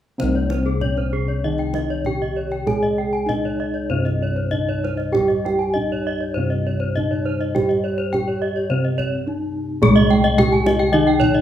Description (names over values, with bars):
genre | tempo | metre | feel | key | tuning
Balinese gamelan | 97-109 BPM | 4/4 | straight | C pelog | A4 = 440 Hz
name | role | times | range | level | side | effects
gamelan-type bronze metallophone | melody | 0.2-11.4 s | Ab3 to Ab4 | -22 LUFS | left 1 dB | none
gamelan-type bronze metallophone | accompaniment | 0.2-11.4 s | C3 to Ab3 | -27 LUFS | right 2 dB | none
gamelan-type bronze metallophone | arpeggios | 0.2-11.4 s | Ab4 to Ab5 | -26 LUFS | left 5 dB | none
gamelan-type bossed gongs | bass | 0.2-11.4 s | C2 to Ab4 | -23 LUFS | equal | none
kendang | percussion | 0.2-11.3 s | none | -27 LUFS | right 2 dB | none
gamelan-type bronze metallophone | arpeggios | 0.5-11.3 s | Ab4 to Ab5 | -27 LUFS | right 4 dB | none
room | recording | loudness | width
moderate large studio reverb, RT60 1.2 s | band playing live in one room | -18 LUFS | side -11 dB against mid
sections
0.2-9.8 A section; 9.8-11.4 B section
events
break 9.0-9.8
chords
none